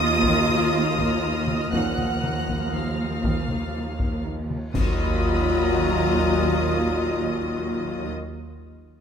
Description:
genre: cinematic, suspense film score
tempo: 61 BPM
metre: 3/4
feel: straight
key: Eb minor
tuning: A4 = 440 Hz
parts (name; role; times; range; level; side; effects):
- rich studio violin section; melody; 0.0-8.1 s; Eb6 to Gb6; -30 LUFS; equal; none
- rich studio violin section; second line; 0.0-8.1 s; Eb5 to Gb5; -32 LUFS; equal; none
- rich studio viola section; accompaniment; 0.0-8.1 s; F3 to F4; -27 LUFS; left 1 dB; none
- rich studio cello section; riff; 0.0-4.6 s; Eb3 to Eb4; -35 LUFS; right 2 dB; none
- rich studio cello section; bass; 0.0-8.1 s; Eb2; -30 LUFS; right 1 dB; none
- rich studio double bass section; bass; 0.0-8.1 s; Eb2; -28 LUFS; right 3 dB; none
- rich studio violin section; texture; 0.0-7.2 s; Bb5 to Bb6; -36 LUFS; left 4 dB; none
- taiko ensemble; drums; 0.2-6.7 s; none; -30 LUFS; left 1 dB; none
- mellow trombone section; sustained chords; 1.7-8.1 s; Bb2 to Gb3; -32 LUFS; right 3 dB; none
- warm French horn section; sustained chords; 1.7-8.1 s; Bb3 to F4; -29 LUFS; left 4 dB; none
- cymbal swell, clash cymbals and concert bass drum; percussion; 1.7-6.7 s; none; -30 LUFS; left 1 dB; none
room: moderate scoring stage reverb, RT60 2.0 s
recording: faint mains hum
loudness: -21 LUFS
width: side -7 dB against mid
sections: 0.0-4.7 A section; 4.7-7.7 B section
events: band accent 4.7-5.7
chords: 0.0 Bbsus4/Eb; 4.7 Ebmadd9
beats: 0.73 | 1.73 2.75 3.75 | 4.75 5.72 6.71

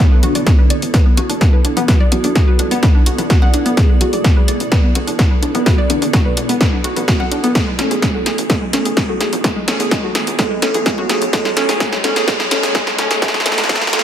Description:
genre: melodic techno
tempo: 127 BPM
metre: 4/4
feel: straight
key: B dorian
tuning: A4 = 438 Hz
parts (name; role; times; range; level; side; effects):
- soft octave-layered synth lead; melody; 0.0-14.0 s; B3 to A4; -23 LUFS; equal; chorus, phaser, sidechain pumping, ping-pong delay
- analog pluck; arpeggios; 0.0-14.0 s; G#3 to F#5; -21 LUFS; equal; chorus, sidechain pumping, diffuse ambient delay
- tight sequencer bass; bass; 0.0-14.0 s; F#1 to E2; -29 LUFS; equal; none
- granular cloud pad; texture; 0.1-14.0 s; B3 to D5; -24 LUFS; right 2 dB; built-in reverb, sidechain pumping
- techno drum kit; drums; 0.2-14.0 s; congas, hi-hat, snare drum; -19 LUFS; equal; overdrive, high-pass filter on snare, high-pass filter on hats, high-pass filter on perc
- electronic kick drum; drums; 0.5-13.8 s; none; -13 LUFS; equal; overdrive
- riser; sound effects; 8.9-14.0 s; none; -28 LUFS; right 1 dB; none
room: moderate plate reverb, RT60 1.8 s, digital ambience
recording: dreamy mix soaked in reverb, high-pass filter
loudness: -12 LUFS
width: side -10 dB against mid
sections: 0.0-14.0 A section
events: build-up 0.0-14.0; drum fill 0.0-14.0; filter sweep on synth pluck 0.0-14.0; filter sweep on soft synth lead 0.0-14.0; filter sweep 0.0-14.0; riser 8.9-14.0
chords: 0.0 Bm; 7.6 F#madd9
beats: 0.47 0.94 1.41 | 1.88 2.35 2.83 3.30 | 3.77 4.24 4.72 5.19 | 5.66 6.13 6.61 7.08 | 7.55 8.02 8.50 8.97 | 9.44 9.91 10.39 10.86 | 11.33 11.80 12.28 12.75 | 13.22 13.69

